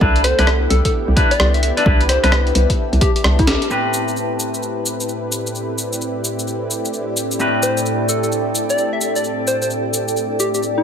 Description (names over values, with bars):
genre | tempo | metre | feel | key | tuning
UK garage, two-step garage | 130 BPM | 4/4 | swing 63% on 16ths | A minor | A4 = 440 Hz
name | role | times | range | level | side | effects
warm analog pad | sustained chords | 0.0-10.8 s | A2 to B4 | -26 LUFS | equal | chorus, sidechain pumping
clean electric guitar | stabs | 0.0-10.8 s | A2 to B4 | -23 LUFS | left 1 dB | none
hollow knocking FM bass | bass | 0.0-3.6 s | C2 | -16 LUFS | equal | none
electronic kick drum | drums | 0.0-3.5 s | none | -17 LUFS | equal | overdrive
granular cloud pad | texture | 0.0-10.8 s | A4 to A5 | -24 LUFS | equal | built-in reverb, sidechain pumping
soft struck synth lead | melody | 0.2-3.7, 7.6-10.8 s | E4 to E5 | -22 LUFS | left 2 dB | chorus, tremolo, ping-pong delay
breakbeat sampler-style drum kit | drums | 0.2-10.7 s | cabasa, hi-hat, rim click, snare drum | -22 LUFS | left 1 dB | none
room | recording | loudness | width
light reverb, digital ambience | none | -15 LUFS | side -8 dB against mid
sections
0.0-3.7 A section; 3.7-10.8 B section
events
drum fill 3.5; band accent 3.5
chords
0.0 Cmaj9; 3.7 Am7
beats
| 0.01 0.47 0.94 1.40 | 1.86 2.32 2.78 3.24 | 3.71 4.17 4.63 5.09 | 5.55 6.01 6.47 6.94 | 7.40 7.86 8.32 8.78 | 9.24 9.71 10.17 10.63